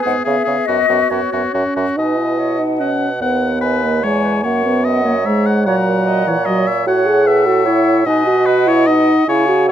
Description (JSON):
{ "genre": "quick classical-period movement for wind quintet", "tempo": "147 BPM", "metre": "3/4", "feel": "rubato", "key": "B major", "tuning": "A4 = 444 Hz", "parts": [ { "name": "mellow silver concert flute", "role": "melody", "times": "0.0-9.7 s", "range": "C#5 to A#5", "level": "-22 LUFS", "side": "left 9 dB", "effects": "none" }, { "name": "bright oboe", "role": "second line", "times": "0.0-9.7 s", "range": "F#4 to F#5", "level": "-20 LUFS", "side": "left 4 dB", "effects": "none" }, { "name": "mellow French horn", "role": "accompaniment", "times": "0.0-9.7 s", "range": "E3 to G#4", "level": "-16 LUFS", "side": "equal", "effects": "none" }, { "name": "warm clarinet", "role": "accompaniment", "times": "0.0-9.7 s", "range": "F#4 to D#5", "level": "-22 LUFS", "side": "right 9 dB", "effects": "none" }, { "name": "warm bassoon", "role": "bass", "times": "0.1-9.7 s", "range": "D#2 to C#3", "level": "-21 LUFS", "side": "right 4 dB", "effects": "none" } ], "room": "light reverb", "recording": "close, detailed microphones, faint mains hum", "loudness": "-13 LUFS", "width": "side -10 dB against mid", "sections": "0.0-2.0 A section; 2.0-9.7 B section", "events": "none", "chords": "0.3 C#m7; 0.7 F#sus4; 1.5 F#5; 2.0 B; 3.2 B/D#; 4.4 F#; 5.7 F#/A#; 6.9 F#m/A; 8.1 B; 9.3 C#m" }